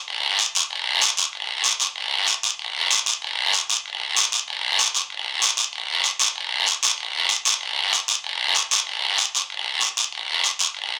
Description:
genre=latin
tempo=191 BPM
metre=4/4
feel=straight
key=none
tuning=none
part: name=guiro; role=percussion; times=0.1-11.0 s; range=none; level=-22 LUFS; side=equal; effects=none
room=moderate studio reverb, RT60 0.6 s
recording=none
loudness=-22 LUFS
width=mono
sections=0.0-1.3 A section; 1.3-11.0 B section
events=none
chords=none

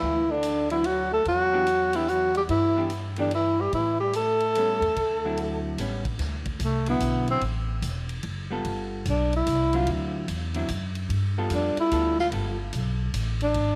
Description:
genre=jazz, small-group swing and bop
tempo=146 BPM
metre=3/4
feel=swing 65% on 8ths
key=D mixolydian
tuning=A4 = 442 Hz
part: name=breathy tenor saxophone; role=melody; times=0.0-13.8 s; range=A3 to A4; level=-27 LUFS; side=equal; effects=none
part: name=breathy trombone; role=second line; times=0.0-5.8 s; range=D3 to A3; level=-35 LUFS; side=equal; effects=none
part: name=upright bass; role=bass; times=0.0-13.8 s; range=E1 to A2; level=-32 LUFS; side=equal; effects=none
part: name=swinging big-band drum kit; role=drums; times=0.4-13.7 s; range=hi-hat, kick drum, ride cymbal, snare drum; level=-40 LUFS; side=equal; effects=none
part: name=vintage hollow-body jazz guitar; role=accompaniment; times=0.7-12.6 s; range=D3 to A4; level=-35 LUFS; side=equal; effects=none
room=moderate echo chamber reverb, RT60 1.9 s, small room reverb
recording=none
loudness=-26 LUFS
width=mono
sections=0.0-6.2 A section; 6.2-13.8 B section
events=tenor saxophone solo 6.2-13.8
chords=0.0 Dadd9; 1.3 Em7; 3.7 A9; 5.0 D9; 5.8 A9; 6.2 D9; 8.6 G9; 9.9 D9; 11.1 G9

